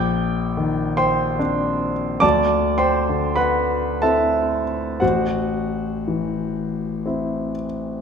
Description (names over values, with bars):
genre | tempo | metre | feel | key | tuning
classical, impressionist solo piano | 57-74 BPM | 3/4 | rubato | unclear | A4 = 440 Hz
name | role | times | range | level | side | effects
clear concert grand piano | solo | 0.0-8.0 s | A1 to G6 | -19 LUFS | equal | none
room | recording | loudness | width
wet recital hall reverb, RT60 1.8 s | none | -19 LUFS | side -6 dB against mid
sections
0.0-8.0 A section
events
none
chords
0.0 Cm9/Bb; 2.2 D9; 5.0 Am6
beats
0.56 1.40 | 2.24 3.09 4.03 | 5.02 6.06 7.05